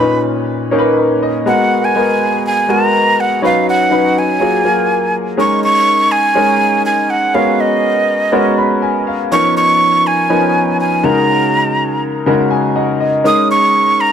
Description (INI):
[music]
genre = pop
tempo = 122 BPM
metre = 4/4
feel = straight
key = G# dorian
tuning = A4 = 440 Hz
[part]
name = breathy jazz flute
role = melody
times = 0.0-14.1 s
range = D#5 to D#6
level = -13 LUFS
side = right 2 dB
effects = none
[part]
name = clear concert grand piano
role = accompaniment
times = 0.0-14.1 s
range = A#2 to B5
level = -14 LUFS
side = left 1 dB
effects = analog chorus
[sound]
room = moderate plate reverb, RT60 2.6 s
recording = none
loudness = -11 LUFS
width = side -8 dB against mid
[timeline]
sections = 0.0-5.4 A section; 5.4-14.1 B section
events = grand piano fill 8.3-9.3, 12.3-13.3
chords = 0.0 Bmaj9; 1.5 G#m9; 3.4 C#9sus4; 4.4 F#maj9; 5.4 D#7sus4; 7.4 G#m11; 9.3 C#13; 11.0 F#69/C#; 13.3 D#7sus4